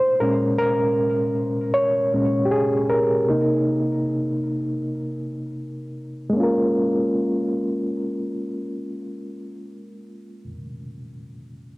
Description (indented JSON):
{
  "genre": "hip hop",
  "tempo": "78 BPM",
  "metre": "4/4",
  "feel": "swing 63% on 16ths",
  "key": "Bb minor",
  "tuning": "A4 = 440 Hz",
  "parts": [
    { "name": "overdriven reed electric piano", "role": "solo", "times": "0.0-11.8 s", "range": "Bb2 to Db5", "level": "-21 LUFS", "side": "equal", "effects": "fast tremolo, low-pass filter, cassette tape, tape echo" }
  ],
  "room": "moderate spring reverb, RT60 2.4 s",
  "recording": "home recording on cassette",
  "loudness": "-20 LUFS",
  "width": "side -21 dB against mid",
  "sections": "0.0-6.4 A section; 6.4-9.4 B section",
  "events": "reed electric piano solo 0.0-6.4; filter sweep on reed electric piano 0.0-6.4",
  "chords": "0.2 Bbm7; 3.3 Cm7; 6.4 Bbm7"
}